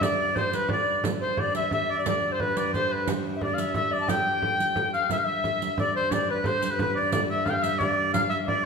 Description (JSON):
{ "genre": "medieval dance", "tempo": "177 BPM", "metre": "3/4", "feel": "straight", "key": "G mixolydian", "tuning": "A4 = 435 Hz", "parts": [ { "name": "clear shawm", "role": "melody", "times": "0.0-8.7 s", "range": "B4 to G5", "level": "-26 LUFS", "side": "equal", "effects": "none" }, { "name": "mellow reedy alto recorder", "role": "second line", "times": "0.0-8.6 s", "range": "B4 to A5", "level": "-30 LUFS", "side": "left 4 dB", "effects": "none" }, { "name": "rich viola da gamba", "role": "drone", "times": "0.0-8.7 s", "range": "G2", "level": "-33 LUFS", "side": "right 1 dB", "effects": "none" }, { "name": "frame drum", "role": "percussion", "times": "0.0-8.6 s", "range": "none", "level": "-32 LUFS", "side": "right 2 dB", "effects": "none" }, { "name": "riq", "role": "percussion", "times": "0.0-8.4 s", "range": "none", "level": "-35 LUFS", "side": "right 5 dB", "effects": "none" } ], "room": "wet recital hall reverb, RT60 1.5 s", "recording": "minimal, uncompressed stereo recording", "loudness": "-23 LUFS", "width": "side -5 dB against mid", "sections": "0.0-5.1 A section; 5.1-8.7 B section", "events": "none", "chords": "none" }